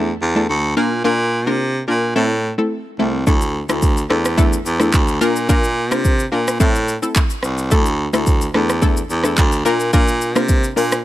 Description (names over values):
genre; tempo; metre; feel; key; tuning
afrobeats; 108 BPM; 4/4; straight; D minor; A4 = 441 Hz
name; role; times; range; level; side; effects
analog pluck; accompaniment; 0.0-11.0 s; A3 to Bb4; -20 LUFS; left 2 dB; chorus
bright baritone saxophone; bass; 0.0-11.0 s; C2 to C3; -18 LUFS; equal; none
afro-pop drum kit; drums; 3.3-11.0 s; handclaps, hi-hat, kick drum, rim click, shaker; -17 LUFS; equal; none
room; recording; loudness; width
digital ambience; none; -15 LUFS; side -14 dB against mid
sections
0.0-3.3 A section; 3.3-11.0 B section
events
none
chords
0.0 Dsus2; 0.8 Bb; 2.2 Am; 3.3 Dsus2; 5.2 Bb; 6.6 Am; 7.7 Dsus2; 9.7 Bb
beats
0.49 | 1.05 1.60 2.16 2.71 | 3.27 3.83 4.38 4.94 | 5.49 6.05 6.60 7.16 | 7.71 8.27 8.82 9.38 | 9.94 10.49